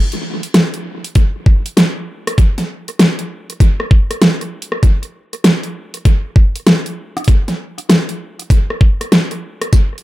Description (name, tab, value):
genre	glitch hop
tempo	98 BPM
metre	4/4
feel	swing 64% on 16ths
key	none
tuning	none
part	dubstep drum kit	drums	0.1-10.0 s	hi-hat, rim click, snare drum, tambourine	-14 LUFS	equal	overdrive, analog delay
part	electronic kick drum	drums	1.2-9.9 s	none	-10 LUFS	equal	overdrive
room	light reverb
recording	echo-heavy mix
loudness	-12 LUFS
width	side -16 dB against mid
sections	0.0-10.0 A section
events	none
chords	none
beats	0.55 1.16 1.77 | 2.38 3.00 3.61 4.22 | 4.83 5.44 6.06 6.67 | 7.28 7.89 8.51 9.12 | 9.73